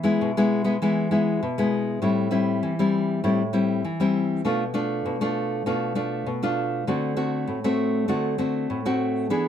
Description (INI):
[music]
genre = samba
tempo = 99 BPM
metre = 4/4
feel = straight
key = A minor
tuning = A4 = 440 Hz
[part]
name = nylon-string guitar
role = solo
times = 0.0-9.5 s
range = A2 to G#4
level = -22 LUFS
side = left 1 dB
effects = none
[sound]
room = moderate studio reverb, RT60 0.6 s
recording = none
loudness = -22 LUFS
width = side -9 dB against mid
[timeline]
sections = 0.0-2.0 A section; 2.0-9.5 B section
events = none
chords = 0.0 E; 2.0 Am7; 4.4 Bm7b5; 6.9 D7